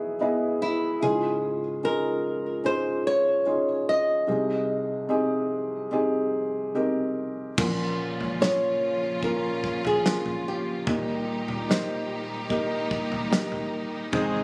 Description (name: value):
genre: pop ballad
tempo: 74 BPM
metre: 4/4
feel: straight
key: unclear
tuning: A4 = 441 Hz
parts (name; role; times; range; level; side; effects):
- flamenco guitar; melody; 0.0-12.1 s; E4 to Eb5; -29 LUFS; equal; none
- felt-muted upright piano; accompaniment; 0.0-14.4 s; C2 to D#5; -29 LUFS; equal; none
- clear studio string section; sustained chords; 7.6-14.4 s; Bb2 to Ab4; -35 LUFS; equal; none
- natural country drum kit; drums; 7.6-14.3 s; crash cymbal, kick drum, snare drum, toms; -32 LUFS; equal; none
- fingerpicked steel-string acoustic guitar; arpeggios; 14.1-14.4 s; Ab3 to Ab4; -30 LUFS; equal; none
- warm sub bass; bass; 14.1-14.4 s; Ab1; -40 LUFS; equal; none
room: light reverb, studio reverb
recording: recorded on a phone in the room, studio ambience, compression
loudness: -26 LUFS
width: mono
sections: 0.0-7.6 A section; 7.6-14.4 B section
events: none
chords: 0.0 Emaj7; 1.0 Dbadd9; 4.3 Abmaj7/C; 7.6 Bbm; 10.9 Eb